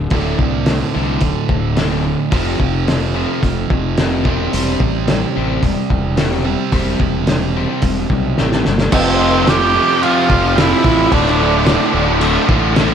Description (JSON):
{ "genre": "classic rock", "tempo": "109 BPM", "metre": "4/4", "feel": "straight", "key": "unclear", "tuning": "A4 = 440 Hz", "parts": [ { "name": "biting overdriven guitar", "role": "riff", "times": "0.0-12.9 s", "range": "D2 to C4", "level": "-21 LUFS", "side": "left 9 dB", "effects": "slapback echo" }, { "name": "fuzz fingered electric bass", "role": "bass", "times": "0.0-12.9 s", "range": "D1 to C2", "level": "-20 LUFS", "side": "equal", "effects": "overdrive" }, { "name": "distorted electric guitar", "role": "riff", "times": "0.1-12.9 s", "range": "D2 to C4", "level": "-20 LUFS", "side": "right 9 dB", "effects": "overdrive" }, { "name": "cloth-damped thuddy drum kit", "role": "drums", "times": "0.1-12.9 s", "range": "crash cymbal, hi-hat, kick drum, snare drum", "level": "-18 LUFS", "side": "equal", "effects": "none" }, { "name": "growling tenor saxophone", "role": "melody", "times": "8.9-12.2 s", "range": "C4 to G4", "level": "-17 LUFS", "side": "right 3 dB", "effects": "slapback echo, analog delay" }, { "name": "octave-fuzz lead guitar", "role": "second line", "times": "8.9-12.2 s", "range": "C5 to G5", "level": "-24 LUFS", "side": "right 2 dB", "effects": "distortion, slapback echo" }, { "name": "tight distorted guitar", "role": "riff", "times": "8.9-12.9 s", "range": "D2 to F4", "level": "-24 LUFS", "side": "equal", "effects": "none" } ], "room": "moderate lush hall reverb, RT60 2.0 s, small room ambience", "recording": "big arena sound, faint mains hum", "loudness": "-13 LUFS", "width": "side -8 dB against mid", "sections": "0.0-8.9 A section; 8.9-12.9 B section", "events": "drum fill 8.4-8.9", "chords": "0.1 D5; 2.3 F5; 4.3 C/E; 8.9 F; 11.1 Dm", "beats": "| 0.11 0.66 1.22 1.77 | 2.32 2.87 3.42 3.98 | 4.53 5.08 5.63 6.18 | 6.73 7.28 7.83 8.38 | 8.93 9.48 10.03 10.58 | 11.12 11.67 12.22 12.77" }